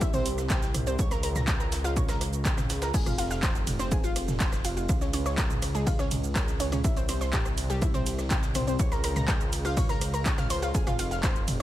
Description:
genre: melodic techno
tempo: 123 BPM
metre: 4/4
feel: straight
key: F harmonic minor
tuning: A4 = 440 Hz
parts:
  - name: analog pluck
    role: arpeggios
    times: 0.0-11.3 s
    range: G3 to Bb6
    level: -32 LUFS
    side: equal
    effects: chorus, sidechain pumping, dub echo
  - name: dark detuned saw bass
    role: bass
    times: 0.0-11.6 s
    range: F1 to Db2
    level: -31 LUFS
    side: equal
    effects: sidechain pumping
  - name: breakbeat sampler-style drum kit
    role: drums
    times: 0.0-11.6 s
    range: hi-hat, shaker, snare drum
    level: -43 LUFS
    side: equal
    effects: none
  - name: electronic kick drum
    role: drums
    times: 0.0-11.3 s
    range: none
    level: -28 LUFS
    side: equal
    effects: none
  - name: punchy analog drum machine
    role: drums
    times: 0.0-11.6 s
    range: crash cymbal, handclaps, hi-hat, ride cymbal, rim click, shaker, toms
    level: -32 LUFS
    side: right 1 dB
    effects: none
room: digital ambience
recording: none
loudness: -25 LUFS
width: side -14 dB against mid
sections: 0.0-11.6 A section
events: none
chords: 0.0 C5; 1.0 Bbm/Db; 2.9 Fm; 4.9 Db; 6.8 C; 8.8 Bbm/Db; 10.7 Fm

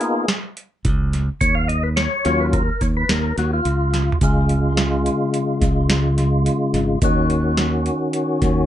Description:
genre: progressive instrumental, band music in an uneven meter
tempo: 107 BPM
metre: 5/4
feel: straight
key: unclear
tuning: A4 = 439 Hz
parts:
  - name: percussive tonewheel organ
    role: accompaniment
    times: 0.0-8.7 s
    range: Db3 to F5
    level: -20 LUFS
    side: left 1 dB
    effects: overdrive, chorus vibrato, slow rotary speaker
  - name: booming analog drum machine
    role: drums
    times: 0.0-8.5 s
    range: hi-hat, kick drum, snare drum, toms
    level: -22 LUFS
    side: right 1 dB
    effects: overdrive
  - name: tube shaker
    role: percussion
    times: 0.0-8.7 s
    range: none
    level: -39 LUFS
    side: right 7 dB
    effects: none
  - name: modern bright fingered electric bass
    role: bass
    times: 0.8-8.7 s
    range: Ab1 to Eb2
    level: -20 LUFS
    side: right 1 dB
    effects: none
room: light reverb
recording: nothing above 10.9 kHz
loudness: -17 LUFS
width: side -11 dB against mid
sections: 0.0-4.2 A section; 4.2-8.7 B section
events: tonewheel organ solo 0.0-4.2; drum fill 3.9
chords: 0.0 Db13; 1.4 Ebm9; 4.2 Db; 7.0 Ebm7

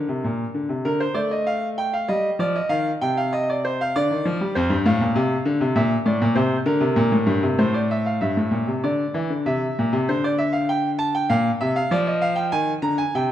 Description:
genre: classical, baroque-style two-part invention for grand piano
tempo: 98 BPM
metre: 3/4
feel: straight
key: Bb major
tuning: A4 = 435 Hz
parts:
  - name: bright concert grand piano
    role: solo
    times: 0.0-13.3 s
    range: F2 to Bb5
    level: -19 LUFS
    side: equal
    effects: none
room: moderate scoring stage reverb, RT60 1.6 s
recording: none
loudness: -19 LUFS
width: side -11 dB against mid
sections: 0.9-8.2 A section; 8.2-13.3 B section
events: none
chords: 0.0 Bb; 0.9 Bb/D (rootless); 2.1 Eb/G; 2.7 F5; 3.9 Dmadd11; 4.6 F; 5.8 Bb; 6.4 C5; 7.6 F/A; 8.2 E7(b5, no3); 9.5 C7; 10.1 Dm7; 11.3 Bbsus2; 11.9 Dm7b5

